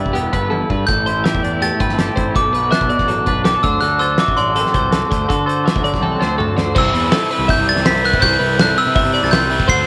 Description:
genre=math rock and midwest emo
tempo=164 BPM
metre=4/4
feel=straight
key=C lydian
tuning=A4 = 436 Hz
part: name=twangy electric guitar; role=accompaniment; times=0.0-6.7 s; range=G2 to B4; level=-26 LUFS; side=equal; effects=tremolo
part: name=twelve-string electric guitar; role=arpeggios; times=0.0-9.9 s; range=G4 to E5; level=-25 LUFS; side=equal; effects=tape echo
part: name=fuzz picked electric bass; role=bass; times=0.0-9.8 s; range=E1 to D3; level=-24 LUFS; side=equal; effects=overdrive
part: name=loose indie drum kit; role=drums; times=0.1-9.8 s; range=crash cymbal, hi-hat, kick drum, snare drum, toms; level=-22 LUFS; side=equal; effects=none
part: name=glockenspiel with hard plastic mallets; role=melody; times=0.9-9.9 s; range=C6 to C7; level=-20 LUFS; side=equal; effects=none
part: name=biting overdriven guitar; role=riff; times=6.8-9.9 s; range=C3 to F#4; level=-25 LUFS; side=equal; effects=none
room=light reverb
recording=none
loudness=-16 LUFS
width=mono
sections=0.0-6.8 A section; 6.8-9.9 B section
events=drum fill 0.5-0.9, 6.0-6.8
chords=0.0 G6; 0.9 Am7; 2.4 Bm7; 3.6 D7; 6.8 Cmaj7

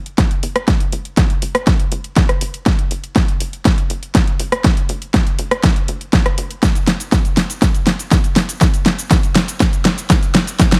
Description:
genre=progressive house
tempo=121 BPM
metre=4/4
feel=straight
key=unclear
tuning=A4 = 441 Hz
part: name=tight sequencer bass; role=bass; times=0.0-10.5 s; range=F#1 to E2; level=-33 LUFS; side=equal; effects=sidechain pumping, high-pass filter
part: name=deep house drum kit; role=drums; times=0.1-10.8 s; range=hi-hat, rim click, shaker, snare drum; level=-19 LUFS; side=equal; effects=overdrive
part: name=electronic kick drum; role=drums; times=0.2-10.7 s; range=none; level=-18 LUFS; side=equal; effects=overdrive
room=little or no reverb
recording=none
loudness=-16 LUFS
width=mono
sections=0.0-10.8 A section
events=build-up 0.0-10.8; drum fill 0.0-10.8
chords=none

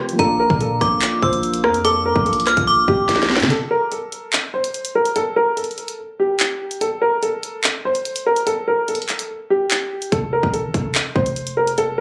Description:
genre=hip hop, drill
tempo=145 BPM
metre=4/4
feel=half-time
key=unclear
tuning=A4 = 440 Hz
part: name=dark grand piano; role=melody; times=0.0-12.0 s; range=G4 to C5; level=-22 LUFS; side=equal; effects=low-pass filter, digital delay
part: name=soft electric-piano-like synth keys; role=accompaniment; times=0.0-3.5 s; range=F3 to D5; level=-27 LUFS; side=equal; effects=chorus, low-pass filter
part: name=drill drum kit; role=drums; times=0.1-11.9 s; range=handclaps, hi-hat, kick drum, rim click, snare drum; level=-23 LUFS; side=equal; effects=none
part: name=metallic FM bell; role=second line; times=0.2-3.1 s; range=Bb5 to F6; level=-21 LUFS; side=equal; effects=chorus
part: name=long sustained 808-style bass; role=bass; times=0.2-3.5, 10.1-12.0 s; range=E1 to D3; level=-30 LUFS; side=equal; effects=none
room=light reverb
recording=recorded on a phone in the room, club reverb, compression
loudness=-19 LUFS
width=mono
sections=0.0-3.5 A section; 3.5-12.0 B section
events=drum fill 3.1-3.5; break 3.5-10.1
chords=0.2 Bb; 3.5 N.C.; 10.1 F

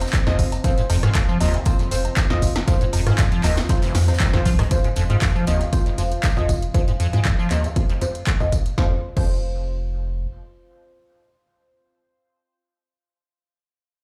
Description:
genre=acid house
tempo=118 BPM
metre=4/4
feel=straight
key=unclear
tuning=A4 = 438 Hz
part: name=dark analog pad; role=sustained chords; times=0.0-8.8 s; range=C4 to F5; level=-36 LUFS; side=equal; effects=chorus, sidechain pumping
part: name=warm sub bass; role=bass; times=0.0-10.3 s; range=F1 to F2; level=-26 LUFS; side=equal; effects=sidechain pumping
part: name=jazz brush drum kit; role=drums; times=0.0-6.6 s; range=hi-hat, snare drum, tambourine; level=-41 LUFS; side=equal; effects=none
part: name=punchy analog drum machine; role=drums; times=0.0-9.3 s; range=cowbell, crash cymbal, handclaps, hi-hat, rim click, snare drum, tambourine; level=-31 LUFS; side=equal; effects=none
part: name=electronic kick drum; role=drums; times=0.1-9.3 s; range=none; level=-22 LUFS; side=equal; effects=none
part: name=liquid acid bass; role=riff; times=0.3-9.3 s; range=F1 to F3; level=-25 LUFS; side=equal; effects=overdrive, analog chorus, dub echo
part: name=deep mellow chord stab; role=stabs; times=0.3-12.6 s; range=C4 to F5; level=-31 LUFS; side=equal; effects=chorus, dub echo
room=moderate small room reverb, RT60 0.5 s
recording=played on a big sound system in a bare room, large studio reverb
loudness=-20 LUFS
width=mono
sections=0.0-4.7 A section; 4.7-8.8 B section; 8.8-12.8 C section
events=drop 0.0-4.7; band accent 4.2; filter sweep on synth stab 4.7-8.8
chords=0.0 F5

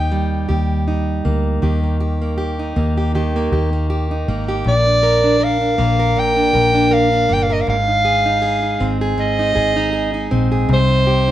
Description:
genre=acoustic pop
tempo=80 BPM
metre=4/4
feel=swing 55% on 16ths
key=unclear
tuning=A4 = 439 Hz
part: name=breathy soprano saxophone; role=melody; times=0.0-11.3 s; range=C5 to G5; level=-17 LUFS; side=equal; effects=none
part: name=fingerpicked plugged-in steel-string acoustic guitar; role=accompaniment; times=0.0-11.3 s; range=Ab2 to Bb4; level=-19 LUFS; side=right 2 dB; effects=none
part: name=vintage muted fingered electric bass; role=bass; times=0.0-11.3 s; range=G1 to Eb2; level=-19 LUFS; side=left 1 dB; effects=none
room=light reverb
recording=band playing live in one room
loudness=-14 LUFS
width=side -12 dB against mid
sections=0.0-1.6 A section; 1.6-4.7 B section; 4.7-11.3 C section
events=none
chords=0.0 Eb; 4.7 Bb; 7.7 Ab; 10.7 Cm

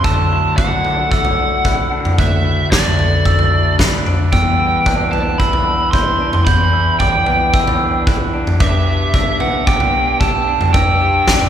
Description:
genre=post-rock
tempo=112 BPM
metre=4/4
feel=straight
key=E minor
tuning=A4 = 440 Hz
part: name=biting lead guitar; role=melody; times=0.0-11.5 s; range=D5 to C6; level=-18 LUFS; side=right 1 dB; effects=overdrive
part: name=pedal steel guitar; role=sustained chords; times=0.0-11.5 s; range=B2 to G4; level=-31 LUFS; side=left 1 dB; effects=none
part: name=electric guitar through a small old amp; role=arpeggios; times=0.0-11.5 s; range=E2 to G4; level=-24 LUFS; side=left 2 dB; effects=phaser
part: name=glockenspiel with brass mallets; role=arpeggios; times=0.0-11.5 s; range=D6 to G6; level=-23 LUFS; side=right 3 dB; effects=none
part: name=fuzz picked electric bass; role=bass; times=0.0-11.5 s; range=D2 to G2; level=-24 LUFS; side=equal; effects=overdrive
part: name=huge arena drum kit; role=drums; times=0.0-11.5 s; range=kick drum, snare drum, toms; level=-15 LUFS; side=equal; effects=none
room=wet church reverb, RT60 2.9 s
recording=recorded in a church or concert hall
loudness=-12 LUFS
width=side -9 dB against mid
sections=0.0-11.5 A section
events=none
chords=0.1 Dadd9; 4.3 Em7; 8.6 G

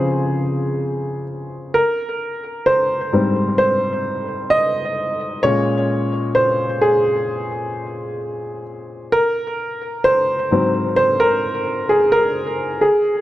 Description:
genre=R&B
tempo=65 BPM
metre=4/4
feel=straight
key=Ab major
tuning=A4 = 440 Hz
part: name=warm baby grand piano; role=solo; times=0.0-13.2 s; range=Ab2 to Eb5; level=-17 LUFS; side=equal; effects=tape echo
room=light reverb, small room ambience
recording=none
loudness=-16 LUFS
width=side -14 dB against mid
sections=0.0-13.2 A section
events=grand piano solo 0.0-13.2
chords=0.0 Dbmaj7; 1.7 Abmaj9; 5.4 Bbm7; 9.1 Ab7

